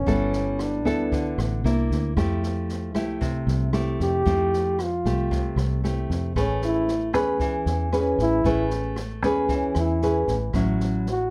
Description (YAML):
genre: bossa nova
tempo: 114 BPM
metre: 4/4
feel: straight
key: unclear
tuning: A4 = 440 Hz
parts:
  - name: breathy trombone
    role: melody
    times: 0.0-11.3 s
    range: C#4 to G4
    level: -27 LUFS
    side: equal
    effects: none
  - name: nylon-string guitar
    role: accompaniment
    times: 0.0-11.3 s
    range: A2 to B4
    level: -28 LUFS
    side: equal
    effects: none
  - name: fingered electric bass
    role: bass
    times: 0.0-11.3 s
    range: G1 to F2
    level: -29 LUFS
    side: equal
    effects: none
  - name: open jazz drum kit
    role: drums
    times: 0.1-11.1 s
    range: kick drum, rim click, snare drum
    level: -35 LUFS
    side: equal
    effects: none
room: light reverb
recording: none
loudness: -24 LUFS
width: mono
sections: 0.0-11.3 A section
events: trombone solo 0.0-11.3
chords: 0.0 G69; 1.6 C9; 2.2 Fmaj9; 6.4 Amaj9; 10.5 A6